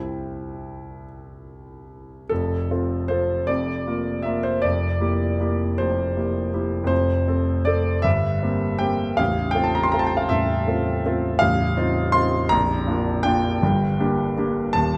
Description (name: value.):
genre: classical, romantic character piece for solo piano.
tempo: 46-55 BPM (dotted quarters).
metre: 6/8.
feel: rubato.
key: F major.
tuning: A4 = 442 Hz.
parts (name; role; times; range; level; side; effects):
warm grand piano; solo; 0.0-15.0 s; A0 to C6; -23 LUFS; equal; none.
room: moderate recital hall reverb, RT60 1.7 s.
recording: none.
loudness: -22 LUFS.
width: mono.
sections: 0.0-2.3 A section; 2.3-15.0 B section.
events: none.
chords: 0.0 C; 2.3 F; 3.5 Bb/F; 4.6 C7/F; 6.9 F; 8.0 C7/G; 9.2 F/A; 11.4 F7/A; 12.5 Bb; 13.6 Gm.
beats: 1.05 | 2.30 3.49 | 4.64 5.80 | 6.91 8.05 | 9.20 10.30 | 11.40 12.50 | 13.62 14.75.